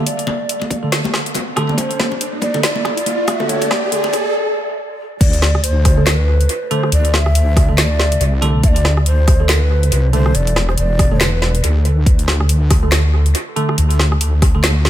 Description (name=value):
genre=deep dubstep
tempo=140 BPM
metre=4/4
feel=swing 58% on 16ths, half-time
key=unclear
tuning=A4 = 440 Hz
part: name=breathy mellow shakuhachi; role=melody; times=0.0-12.0 s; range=G4 to F5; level=-23 LUFS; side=equal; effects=low-pass filter, dub echo
part: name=bell-like tine electric piano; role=stabs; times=0.0-14.7 s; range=D3 to A4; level=-23 LUFS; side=right 2 dB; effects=phaser, low-pass filter, dub echo
part: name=riser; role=sound effects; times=0.1-4.3 s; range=none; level=-23 LUFS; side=right 1 dB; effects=none
part: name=deep house drum kit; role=drums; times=0.1-14.9 s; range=crash cymbal, handclaps, hi-hat, rim click, snare drum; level=-20 LUFS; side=equal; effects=high-pass filter on hats, high-pass filter on snare, high-pass filter on cymbals, analog delay
part: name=congas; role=percussion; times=0.3-4.2 s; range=none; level=-24 LUFS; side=left 2 dB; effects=dub echo
part: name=electronic kick drum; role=drums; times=0.7-14.5 s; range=none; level=-14 LUFS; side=equal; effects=high-pass filter on kick
part: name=wobble bass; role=bass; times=5.2-14.9 s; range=E1 to D2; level=-14 LUFS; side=equal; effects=chorus
room=light reverb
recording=echo-heavy mix, high-pass filter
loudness=-13 LUFS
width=side -12 dB against mid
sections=0.0-5.2 A section; 5.2-14.9 B section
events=build-up 0.0-5.2; filter sweep on tine electric piano 0.0-5.2; filter sweep 0.0-5.2; riser 0.1-4.3; break 4.3-5.2; drop 5.2-14.9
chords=0.0 D5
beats=| 0.06 0.49 0.92 1.35 | 1.78 2.21 2.63 3.06 | 3.49 3.92 4.35 4.78 | 5.21 5.63 6.06 6.49 | 6.92 7.35 7.78 8.21 | 8.63 9.06 9.49 9.92 | 10.35 10.78 11.21 11.63 | 12.06 12.49 12.92 13.35 | 13.78 14.21 14.63